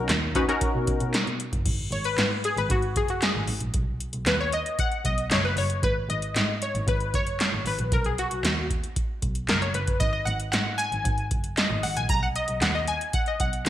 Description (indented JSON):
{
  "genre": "early-eighties boogie funk",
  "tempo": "115 BPM",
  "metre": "4/4",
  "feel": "straight",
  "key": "unclear",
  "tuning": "A4 = 442 Hz",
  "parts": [
    { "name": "funky polysynth comp", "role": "accompaniment", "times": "0.0-13.7 s", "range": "C#4 to A#5", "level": "-27 LUFS", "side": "left 2 dB", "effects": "chorus" },
    { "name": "warm double bass", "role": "bass", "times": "0.0-13.7 s", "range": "F#1 to B2", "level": "-29 LUFS", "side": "right 1 dB", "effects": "none" },
    { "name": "electro analog drum machine", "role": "drums", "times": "0.1-13.7 s", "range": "crash cymbal, handclaps, hi-hat, kick drum, snare drum", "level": "-26 LUFS", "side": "right 1 dB", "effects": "gated reverb" }
  ],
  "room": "moderate plate reverb, RT60 1.9 s",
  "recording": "bright 1980s-style digital production",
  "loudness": "-23 LUFS",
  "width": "side -12 dB against mid",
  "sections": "0.0-1.7 A section; 1.7-13.7 B section",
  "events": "analog polysynth solo 1.7-13.7",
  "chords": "0.0 Bmaj9; 1.7 N.C.; 3.7 B; 5.8 G#5; 12.1 B"
}